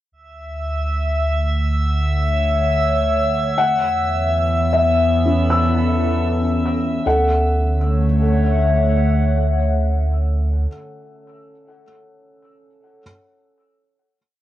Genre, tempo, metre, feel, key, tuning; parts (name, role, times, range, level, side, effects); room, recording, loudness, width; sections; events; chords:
ambient; 52 BPM; 3/4; straight; D major; A4 = 441 Hz
warbly tape-like pad; sustained chords; 1.4-11.3 s; D3 to B5; -22 LUFS; left 1 dB; chorus, built-in reverb, cassette tape
warm sub bass; bass; 0.1-10.7 s; D2 to E2; -20 LUFS; right 1 dB
drifting glass-harmonics texture; texture; 0.1-7.1 s; E5 to E6; -23 LUFS; left 1 dB; chorus, built-in reverb, cassette tape, plate reverb
felt-muted upright piano; melody; 3.6-10.7 s; E5 to F#5; -22 LUFS; left 3 dB; cassette tape, plate reverb, tape echo
felt-muted upright piano; arpeggios; 5.3-13.0 s; C#4 to E6; -24 LUFS; equal; cassette tape, plate reverb, tape echo
wet booth ambience, RT60 0.2 s; home recording on cassette; -16 LUFS; side -13 dB against mid
0.1-7.1 A section; 7.1-10.5 final chord
fade-in on ambient pad 0.1-7.1
0.1 Dmaj7; 3.6 Esus4; 7.1 Dmaj7